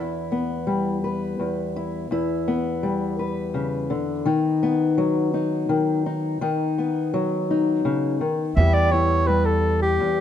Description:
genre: acoustic folk duo or small band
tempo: 84 BPM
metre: 3/4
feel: straight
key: E dorian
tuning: A4 = 440 Hz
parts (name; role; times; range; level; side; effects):
- fingerpicked old ladder-braced acoustic guitar; accompaniment; 0.0-10.2 s; E2 to B4; -22 LUFS; left 2 dB; none
- mellow soprano saxophone; melody; 8.6-10.2 s; G4 to E5; -20 LUFS; equal; none
- upright bass; bass; 8.6-10.0 s; E2; -21 LUFS; right 1 dB; none
room: light reverb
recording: dark, warm production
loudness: -20 LUFS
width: side -10 dB against mid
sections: 0.0-8.6 A section; 8.6-10.2 B section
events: soprano saxophone solo 8.6-10.2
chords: 0.0 Em; 4.3 B/D#; 8.6 Em

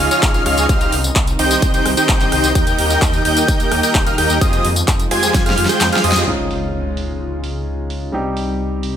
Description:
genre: EDM, festival progressive house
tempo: 129 BPM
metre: 4/4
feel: straight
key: unclear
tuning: A4 = 440 Hz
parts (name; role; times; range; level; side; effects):
- lush unison pad; sustained chords; 0.0-9.0 s; Db3 to Ab4; -25 LUFS; equal; chorus, vintage 12-bit sampler grit, sidechain pumping
- wide unison lead; arpeggios; 0.0-6.2 s; Eb6 to Ab6; -20 LUFS; left 1 dB; sidechain pumping, tape echo
- dense compressed supersaw; riff; 0.0-6.2 s; Eb4 to Ab5; -19 LUFS; right 1 dB; sidechain pumping, tape echo
- wide detuned saw bass; bass; 0.0-9.0 s; Eb1 to F2; -22 LUFS; equal; chorus, sidechain pumping
- big-room dance drum kit; drums; 0.1-8.9 s; handclaps, hi-hat, rim click, snare drum, tambourine; -20 LUFS; equal; low-pass filter on hats, low-pass filter on perc, low-pass filter on snare, low-pass filter on room
- electronic kick drum; drums; 0.2-5.4 s; none; -17 LUFS; equal; none
- warm grand piano; accompaniment; 6.3-9.0 s; G3 to G4; -23 LUFS; equal; sidechain pumping, tape echo
- impact; sound effects; 6.3-8.1 s; none; -30 LUFS; equal; none
room: light reverb, digital ambience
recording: none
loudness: -14 LUFS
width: side -9 dB against mid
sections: 0.0-6.3 A section; 6.3-9.0 B section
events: drop 0.0-6.3; drum fill 5.3-6.3; kick drops out 5.8-6.3; band accent 6.1; impact 6.3-8.1; filter sweep on analog synth pad 6.3-9.0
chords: 0.0 Dbadd9; 0.7 Cm; 2.6 Eb; 4.4 Fmadd9; 6.3 Dbadd9; 8.1 Cm

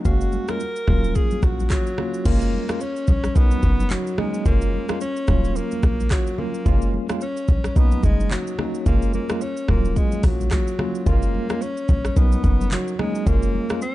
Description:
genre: afrobeats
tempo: 109 BPM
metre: 4/4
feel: swing 58% on 16ths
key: F# major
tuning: A4 = 438 Hz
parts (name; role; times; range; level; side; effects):
- tine electric piano; accompaniment; 0.0-13.8 s; F#3 to E#5; -28 LUFS; equal; medium stereo tremolo
- warm alto saxophone; melody; 0.1-13.9 s; F#3 to A#4; -27 LUFS; equal; digital delay
- short 808-style bass; bass; 0.1-13.6 s; D#1 to B1; -20 LUFS; equal; none
- afro-pop drum kit; drums; 0.1-13.9 s; crash cymbal, handclaps, hi-hat, kick drum, rim click, shaker; -23 LUFS; equal; none
- congas; percussion; 0.1-13.8 s; none; -33 LUFS; left 3 dB; none
room: digital ambience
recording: dark, warm production, nothing above 10.8 kHz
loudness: -18 LUFS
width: side -16 dB against mid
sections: 0.0-2.3 A section; 2.3-13.9 B section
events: none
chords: 0.1 F#maj7; 0.9 D#m7; 2.3 F#maj7; 3.4 Bmaj7; 4.5 F#maj7; 5.3 D#m7; 6.7 F#maj7; 7.8 Bmaj7; 8.9 F#maj7; 9.7 D#m7; 11.1 F#maj7; 12.2 Bmaj7; 13.3 F#maj7

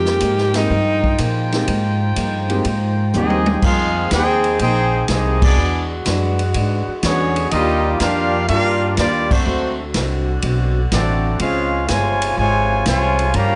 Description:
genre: jazz, big band swing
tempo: 123 BPM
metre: 4/4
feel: swing 69% on 8ths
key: F minor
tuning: A4 = 440 Hz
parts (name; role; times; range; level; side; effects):
- breathy tenor saxophone; melody; 0.0-1.2 s; Eb4 to G4; -20 LUFS; equal; none
- dark baby grand piano; accompaniment; 0.0-3.4 s; Ab3 to G4; -27 LUFS; equal; none
- picked steel-string acoustic guitar; accompaniment; 0.0-13.6 s; Db3 to Bb4; -30 LUFS; equal; none
- mellow saxophone section; sustained chords; 0.0-13.6 s; D3 to G5; -29 LUFS; equal; none
- upright bass; bass; 0.0-13.6 s; G1 to Bb2; -22 LUFS; equal; none
- swinging big-band drum kit; drums; 0.1-13.5 s; crash cymbal, hi-hat, kick drum, ride cymbal, snare drum, toms; -25 LUFS; equal; none
- bright trombone section; second line; 3.1-13.6 s; C3 to Ab4; -26 LUFS; equal; none
- warm trumpet section; melody; 3.2-13.6 s; A3 to Bb5; -22 LUFS; equal; none
room: light reverb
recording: nothing above 10.3 kHz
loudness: -18 LUFS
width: mono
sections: 0.0-3.6 A section; 3.6-13.6 B section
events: tenor saxophone solo 0.0-3.6; drum fill 3.1-3.6; band accent 5.3, 9.2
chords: 0.0 Fm11; 5.6 E9; 7.5 Ebmaj9; 9.5 D7#11; 11.4 Dbmaj7

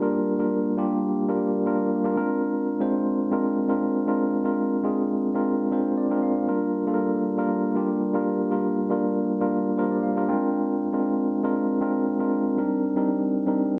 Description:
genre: disco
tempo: 118 BPM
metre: 4/4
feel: straight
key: unclear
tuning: A4 = 440 Hz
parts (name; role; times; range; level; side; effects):
- mellow tine electric piano; solo; 0.0-13.8 s; G3 to G5; -24 LUFS; equal; none
room: wet studio reverb, RT60 0.6 s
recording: cassette tape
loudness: -24 LUFS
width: mono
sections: 0.0-13.8 A section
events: tine electric piano fill 5.5-6.5, 9.5-10.5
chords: 0.0 Gm7; 2.2 Bb9; 6.5 Gm7; 10.3 Bb9; 12.6 Cm9

